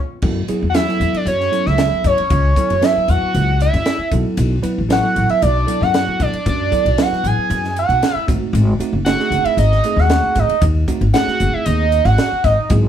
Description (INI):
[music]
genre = electric jazz fusion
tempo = 115 BPM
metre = 4/4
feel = straight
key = F# minor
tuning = A4 = 440 Hz
[part]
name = bell-like tine electric piano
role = accompaniment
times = 0.2-12.9 s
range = F#3 to B4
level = -23 LUFS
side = right 2 dB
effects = none
[part]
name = upright bass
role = bass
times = 0.2-12.9 s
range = F#1 to F#2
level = -17 LUFS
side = left 1 dB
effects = none
[part]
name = crisp fusion drum kit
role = drums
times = 0.2-12.8 s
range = crash cymbal, hi-hat, kick drum, ride cymbal, snare drum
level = -22 LUFS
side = right 1 dB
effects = none
[part]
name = overdriven synth lead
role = melody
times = 0.7-12.7 s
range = C#5 to G#5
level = -17 LUFS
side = right 2 dB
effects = distortion, phaser
[sound]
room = moderate studio reverb, RT60 0.5 s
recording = band playing live in one room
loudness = -14 LUFS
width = side -9 dB against mid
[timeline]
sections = 0.2-12.9 A section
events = tine electric piano fill 0.0; drum fill 0.0; band accent 0.0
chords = 0.2 F#m7; 4.1 Bm7; 8.3 G#7b9